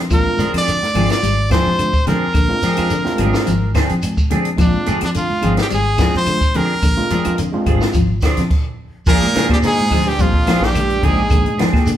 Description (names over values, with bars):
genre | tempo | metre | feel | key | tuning
afrobeat | 107 BPM | 4/4 | straight | Bb mixolydian | A4 = 440 Hz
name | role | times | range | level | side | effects
fingered electric bass | bass | 0.0-12.0 s | Ab1 to Bb2 | -21 LUFS | equal | none
brilliant trumpet | melody | 0.1-11.6 s | D4 to D5 | -20 LUFS | right 1 dB | none
overdriven tine electric piano | accompaniment | 0.1-8.0 s | Ab3 to Ab4 | -24 LUFS | right 1 dB | none
clean electric guitar | arpeggios | 0.1-12.0 s | D3 to G3 | -23 LUFS | left 4 dB | none
compact cocktail drum kit | drums | 0.1-12.0 s | crash cymbal, hi-hat, kick drum, snare drum | -19 LUFS | equal | none
claves | percussion | 0.1-11.9 s | none | -37 LUFS | left 7 dB | none
congas | percussion | 0.1-11.7 s | none | -26 LUFS | right 1 dB | none
shekere | percussion | 0.1-12.0 s | none | -28 LUFS | right 1 dB | none
clean electric guitar | stabs | 0.4-11.9 s | F3 to Ab4 | -25 LUFS | right 2 dB | phaser
growling alto saxophone | second line | 9.1-11.6 s | F3 to Bb3 | -28 LUFS | right 3 dB | none
warm baritone saxophone | second line | 9.1-11.6 s | F2 to Bb2 | -24 LUFS | right 2 dB | none
room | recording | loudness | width
moderate large studio reverb, RT60 1.2 s | band playing live in one room | -14 LUFS | side -11 dB against mid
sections
0.0-9.1 A section; 9.1-12.0 B section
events
stop 8.5-9.1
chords
0.0 Bb9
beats
| 0.11 0.67 1.23 1.79 | 2.35 2.91 3.47 4.03 | 4.59 5.15 5.71 6.27 | 6.83 7.39 7.95 8.51 | 9.07 9.63 10.19 10.75 | 11.31 11.87